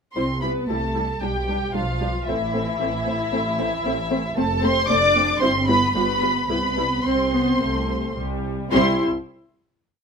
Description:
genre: quick classical-period movement for string orchestra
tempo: 112 BPM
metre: 4/4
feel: uneven beats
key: C major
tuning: A4 = 445 Hz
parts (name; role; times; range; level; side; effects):
- muted symphonic violin section; melody; 0.1-9.0 s; E5 to D6; -24 LUFS; equal; none
- muted symphonic violin section; second line; 0.2-9.0 s; E4 to D5; -26 LUFS; left 1 dB; none
- muted symphonic viola section; accompaniment; 0.2-9.0 s; G3 to F4; -25 LUFS; equal; none
- muted symphonic cello section; bass; 0.2-9.0 s; E3 to D4; -28 LUFS; right 1 dB; none
- muted symphonic double bass section; bass; 0.2-9.0 s; F1 to C2; -28 LUFS; right 2 dB; none
room: moderate studio reverb, RT60 0.8 s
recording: minimal, uncompressed stereo recording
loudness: -19 LUFS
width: side -6 dB against mid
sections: 0.2-8.7 A section; 8.7-10.0 final chord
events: none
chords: 0.2 C; 1.2 G/B; 2.3 Am; 4.4 Dm7/F; 5.4 C/G; 6.0 G7; 6.5 C5; 8.7 C

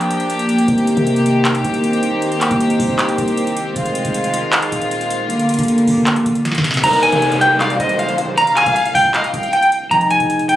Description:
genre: hip hop, trap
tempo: 156 BPM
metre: 4/4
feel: half-time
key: C minor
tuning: A4 = 441 Hz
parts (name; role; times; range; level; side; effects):
- warm symphonic string section; sustained chords; 0.0-6.8 s; D3 to G4; -16 LUFS; equal; none
- booming analog drum machine; drums; 0.0-10.6 s; crash cymbal, handclaps, hi-hat, kick drum, snare drum; -22 LUFS; equal; none
- long sustained 808-style bass; bass; 0.7-10.6 s; Eb1 to C3; -25 LUFS; equal; none
- electric guitar at the edge of break-up; melody; 6.8-10.6 s; Eb5 to Bb5; -14 LUFS; equal; tremolo, low-pass filter, ping-pong delay
- concert harp; accompaniment; 6.8-10.6 s; C3 to Bb4; -23 LUFS; equal; low-pass filter
- downlifter; sound effects; 6.8-9.9 s; none; -23 LUFS; right 1 dB; none
- rich studio violin section; second line; 7.6-9.9 s; C5 to G5; -23 LUFS; equal; ping-pong delay
room: light reverb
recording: recorded on a phone in the room, club reverb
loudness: -13 LUFS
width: side -13 dB against mid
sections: 0.0-6.8 A section; 6.8-10.6 B section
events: break 0.0-0.7; drum fill 6.5-6.8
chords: 0.0 Gm7; 0.7 Cm7; 3.8 Fm7; 5.3 Gm7; 6.8 Cm7; 9.9 Fm7

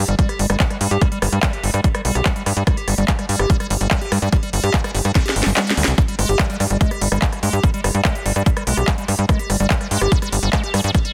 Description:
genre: psychedelic trance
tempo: 145 BPM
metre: 4/4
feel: straight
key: G major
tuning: A4 = 445 Hz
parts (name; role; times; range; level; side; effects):
- liquid acid bass; riff; 0.0-11.1 s; G3 to G4; -26 LUFS; equal; phaser, sidechain pumping, digital delay
- tight sequencer bass; bass; 0.0-10.9 s; G1 to G2; -21 LUFS; equal; none
- techno drum kit; drums; 0.1-11.1 s; handclaps, hi-hat, rim click, snare drum; -25 LUFS; equal; none
- electronic kick drum; drums; 0.2-11.0 s; none; -20 LUFS; equal; none
room: light reverb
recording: dense, heavily limited modern master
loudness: -18 LUFS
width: mono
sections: 0.0-11.1 A section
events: drum fill 5.2-6.0; kick drops out 5.6-6.0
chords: 0.0 G5

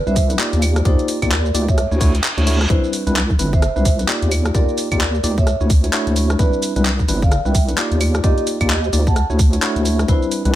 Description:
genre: UK garage, two-step garage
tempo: 130 BPM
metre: 4/4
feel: swing 60% on 16ths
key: unclear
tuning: A4 = 438 Hz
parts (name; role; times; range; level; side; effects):
- deep soft wobble bass; bass; 0.0-10.6 s; G1 to Eb2; -18 LUFS; equal; chorus
- vibraphone with medium mallets; melody; 0.1-10.2 s; Eb4 to A5; -25 LUFS; right 1 dB; ping-pong delay
- tine electric piano; stabs; 0.1-10.6 s; G3 to D5; -22 LUFS; left 1 dB; auto-pan, dub echo
- garage drum kit; drums; 0.1-10.5 s; claves, handclaps, hi-hat, rim click, shaker; -23 LUFS; equal; studio reverb
- electronic kick drum; drums; 0.2-10.2 s; none; -17 LUFS; equal; studio reverb
- reverse cymbal; sound effects; 2.0-2.7 s; none; -26 LUFS; right 2 dB; none
room: little or no reverb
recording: none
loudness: -14 LUFS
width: side -13 dB against mid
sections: 0.0-10.6 A section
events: reverse cymbal 2.0-2.7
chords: 0.0 Cmaj9; 0.6 Ebmaj9; 1.8 Dmaj9; 2.7 Cmaj9; 4.3 Ebmaj9; 5.5 Dmaj9; 6.4 Cmaj9; 8.0 Ebmaj9; 9.2 Dmaj9

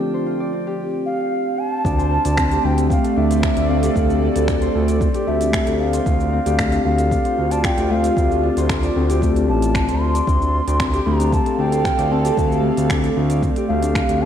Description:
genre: organic downtempo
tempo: 114 BPM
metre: 4/4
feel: straight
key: D minor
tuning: A4 = 440 Hz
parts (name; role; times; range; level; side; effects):
- airy breathy pad; sustained chords; 0.0-14.3 s; D3 to F5; -25 LUFS; right 3 dB; chorus, sidechain pumping
- Celtic harp; arpeggios; 0.0-14.3 s; A3 to D5; -22 LUFS; left 4 dB; analog delay
- drifting glass-harmonics texture; texture; 0.0-0.8 s; G5; -43 LUFS; right 1 dB; chorus, built-in reverb
- bansuri; melody; 1.1-14.3 s; E5 to C6; -23 LUFS; equal; analog delay
- smooth synth bass; bass; 1.8-14.3 s; A1 to D2; -20 LUFS; equal; sidechain pumping
- electronic kick drum; drums; 1.8-14.1 s; none; -22 LUFS; equal; none
- organic electronic drum kit; drums; 1.9-14.2 s; finger snaps, hi-hat, shaker; -28 LUFS; equal; none
room: wet lush hall reverb, RT60 2.1 s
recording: dreamy mix soaked in reverb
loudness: -16 LUFS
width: side -9 dB against mid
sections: 0.0-1.9 A section; 1.9-14.3 B section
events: none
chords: 0.0 Dmadd11; 6.1 F69; 10.3 Dm

